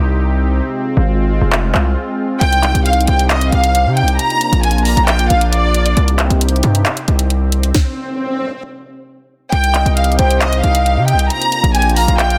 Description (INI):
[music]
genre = hip hop, trap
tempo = 135 BPM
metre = 4/4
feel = half-time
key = C minor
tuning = A4 = 443 Hz
[part]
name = sweeping resonant pad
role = sustained chords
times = 0.0-12.4 s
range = C3 to G4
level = -24 LUFS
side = equal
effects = chorus
[part]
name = distorted 808-style bass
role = bass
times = 0.0-12.4 s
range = F1 to C3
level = -16 LUFS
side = equal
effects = distortion
[part]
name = trap drum kit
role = drums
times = 1.5-12.4 s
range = handclaps, hi-hat, kick drum, snare drum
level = -21 LUFS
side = equal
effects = none
[part]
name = warm symphonic violin section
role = melody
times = 2.4-5.9, 9.5-12.4 s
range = D5 to Bb5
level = -18 LUFS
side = equal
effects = low-pass filter, digital delay
[part]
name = swell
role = sound effects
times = 7.3-8.6 s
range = none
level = -27 LUFS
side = equal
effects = none
[part]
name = soft octave-layered synth lead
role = second line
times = 9.7-12.4 s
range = C5 to G5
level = -24 LUFS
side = equal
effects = chorus, digital delay
[sound]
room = light reverb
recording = dense, heavily limited modern master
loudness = -14 LUFS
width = mono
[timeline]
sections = 0.0-9.5 A section; 9.5-12.4 B section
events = break 0.0-2.4, 6.0-9.5; swell 7.3-9.5; stop 7.7-9.5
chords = 0.0 Cm; 0.6 Fm; 2.4 Cm; 4.2 Bb; 6.0 Cm; 7.7 N.C.; 9.5 Cm; 11.3 Bb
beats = 0.19 | 0.64 1.08 1.52 1.97 | 2.41 2.86 3.30 3.75 | 4.19 4.63 5.08 5.52 | 5.97 6.41 6.86 7.30 | 7.75 8.19 8.63 9.08 | 9.52 9.97 10.41 10.86 | 11.30 11.75 12.19